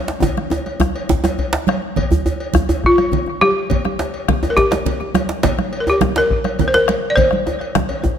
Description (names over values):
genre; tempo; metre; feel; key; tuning
west african traditional, West African drum ensemble; 138 BPM (dotted quarters); 12/8; straight; unclear; A4 = 440 Hz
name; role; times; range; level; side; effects
bombo; percussion; 0.1-8.2 s; none; -24 LUFS; left 3 dB; none
djembe; percussion; 0.1-8.2 s; none; -21 LUFS; right 2 dB; none
congas; percussion; 0.2-8.1 s; none; -22 LUFS; right 6 dB; none
cowbell; percussion; 0.2-8.0 s; none; -28 LUFS; left 2 dB; none
djembe; percussion; 0.2-8.0 s; none; -25 LUFS; left 4 dB; none
balafon; melody; 2.9-7.5 s; F4 to D5; -17 LUFS; left 1 dB; tape echo
room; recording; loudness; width
moderate scoring stage reverb, RT60 1.9 s; close, detailed microphones; -15 LUFS; side -8 dB against mid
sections
0.0-2.0 A section; 2.0-8.2 B section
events
drum fill 0.2-2.0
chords
none